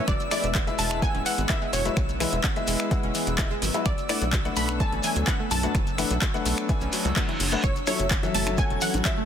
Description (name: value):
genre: progressive house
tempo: 127 BPM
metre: 4/4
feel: straight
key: unclear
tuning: A4 = 439 Hz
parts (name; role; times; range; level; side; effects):
- evolving wavetable pad; sustained chords; 0.0-9.3 s; F#3 to B4; -35 LUFS; equal; chorus, built-in reverb, sidechain pumping
- analog pluck; arpeggios; 0.0-9.2 s; F#2 to F#4; -34 LUFS; equal; chorus, phaser, sidechain pumping, ping-pong delay
- twinkling granular texture; texture; 0.0-9.3 s; E6 to G#6; -38 LUFS; right 2 dB; built-in reverb, sidechain pumping
- wide unison pluck; melody; 0.1-9.3 s; C#5 to B5; -32 LUFS; equal; cassette tape, ping-pong delay
- soft synth bell; second line; 0.1-9.3 s; C#5 to B5; -39 LUFS; left 1 dB; none
- tight sequencer bass; bass; 0.1-9.0 s; D1 to D2; -30 LUFS; equal; tube saturation, sidechain pumping
- deep house drum kit; drums; 0.1-9.2 s; finger snaps, handclaps, hi-hat; -30 LUFS; equal; overdrive
- electronic kick drum; drums; 0.1-9.2 s; none; -26 LUFS; equal; none
- shekere; percussion; 0.1-9.2 s; none; -37 LUFS; left 2 dB; none
- warm grand piano; stabs; 0.3-9.1 s; F#3 to G#5; -31 LUFS; left 5 dB; sidechain pumping, ping-pong delay
- reverse cymbal; sound effects; 6.9-7.6 s; none; -35 LUFS; right 2 dB; none
- congas and bongos; percussion; 7.6-9.0 s; none; -36 LUFS; left 6 dB; none
room: digital ambience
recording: dense, heavily limited modern master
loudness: -22 LUFS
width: side -9 dB against mid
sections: 0.0-9.3 A section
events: reverse cymbal 6.9-7.6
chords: 0.1 E; 3.9 Bm7; 7.6 F#m7